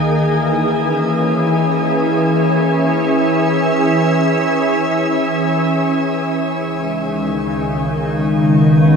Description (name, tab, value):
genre	ambient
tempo	74 BPM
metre	4/4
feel	straight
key	C# dorian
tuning	A4 = 435 Hz
part	soft additive organ-like pad	sustained chords	0.0-9.0 s	C#2 to E5	-13 LUFS	equal	ensemble chorus, built-in reverb
room	wet shimmer reverb, RT60 7.6 s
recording	dark, warm production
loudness	-14 LUFS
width	side -5 dB against mid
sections	0.1-9.0 A section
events	filter sweep on ambient pad 0.1-9.0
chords	0.1 C#m; 6.6 B/C#